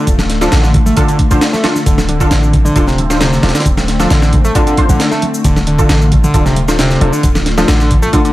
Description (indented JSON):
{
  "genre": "breakbeat, breaks",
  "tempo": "134 BPM",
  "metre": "4/4",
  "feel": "straight",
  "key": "D minor",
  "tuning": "A4 = 443 Hz",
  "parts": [
    { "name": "phased analog pad", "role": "sustained chords", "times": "0.0-8.3 s", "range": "D3 to F4", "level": "-20 LUFS", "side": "left 2 dB", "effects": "phaser, chorus, vintage 12-bit sampler grit, sidechain pumping" },
    { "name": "overdriven synth lead", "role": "riff", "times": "0.0-8.3 s", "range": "C3 to A3", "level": "-16 LUFS", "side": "equal", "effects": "distortion, tape echo" },
    { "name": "warm 808-style bass", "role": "bass", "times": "0.1-8.1 s", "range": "D1 to A1", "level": "-14 LUFS", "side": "equal", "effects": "tube saturation" },
    { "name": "breakbeat sampler-style drum kit", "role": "drums", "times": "0.1-8.3 s", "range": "hi-hat, kick drum, snare drum", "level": "-14 LUFS", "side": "equal", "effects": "studio ambience" },
    { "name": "shaker", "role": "drums", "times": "0.1-8.3 s", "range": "none", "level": "-28 LUFS", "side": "left 2 dB", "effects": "overdrive, studio ambience" },
    { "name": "congas", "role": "percussion", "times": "0.1-8.2 s", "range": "none", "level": "-21 LUFS", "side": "right 1 dB", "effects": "none" },
    { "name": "orchestra-hit-like synth stab", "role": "stabs", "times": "0.4-8.3 s", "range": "D4 to C5", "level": "-19 LUFS", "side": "equal", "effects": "built-in reverb, tape echo" }
  ],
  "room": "light reverb",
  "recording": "vinyl crackle",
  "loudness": "-9 LUFS",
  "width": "side -16 dB against mid",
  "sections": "0.0-8.3 A section",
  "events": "none",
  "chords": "0.0 Dm"
}